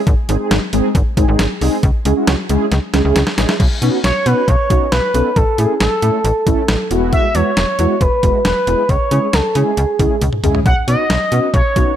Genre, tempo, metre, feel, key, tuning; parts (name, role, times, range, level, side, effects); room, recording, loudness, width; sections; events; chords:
synth-pop; 136 BPM; 4/4; straight; C# minor; A4 = 440 Hz
slap-like FM bass; bass; 0.1-11.8 s; E1 to C#3; -17 LUFS; equal
detuned 8-bit digital drum machine; drums; 0.1-11.9 s; crash cymbal, hi-hat, kick drum, snare drum, toms; -17 LUFS; equal
mellow synth brass; accompaniment; 0.3-11.9 s; G#3 to A4; -19 LUFS; equal; chorus
expressive synth lead; melody; 4.0-11.9 s; G#4 to F#5; -17 LUFS; right 1 dB; chorus, tape echo
light reverb, digital ambience; -13 LUFS; side -10 dB against mid
0.0-3.6 A section; 3.6-12.0 B section
drum fill 2.7-3.6, 10.2-10.7
0.1 G#; 1.8 C#m; 3.6 Badd9; 5.4 A; 6.9 Eadd9; 8.9 C#m; 10.7 Badd9